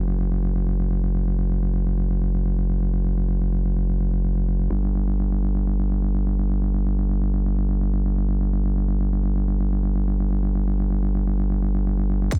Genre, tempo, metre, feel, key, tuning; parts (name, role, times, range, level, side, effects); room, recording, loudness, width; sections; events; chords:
bass house; free time; A4 = 436 Hz
vowel-sweep wobble bass; bass; 0.0-12.3 s; F#1 to G1; -20 LUFS; equal; chorus, overdrive, sidechain pumping
electronic handclaps; drums; 12.3-12.4 s; -35 LUFS; left 1 dB; low-pass filter on hats, small room ambience, low-pass filter on perc, low-pass filter on snare, low-pass filter on cymbals
electronic kick drum; drums; 12.3-12.4 s; -19 LUFS; equal; small room ambience
little or no reverb; dense, heavily limited modern master; -20 LUFS; side -33 dB against mid
0.0-12.3 A section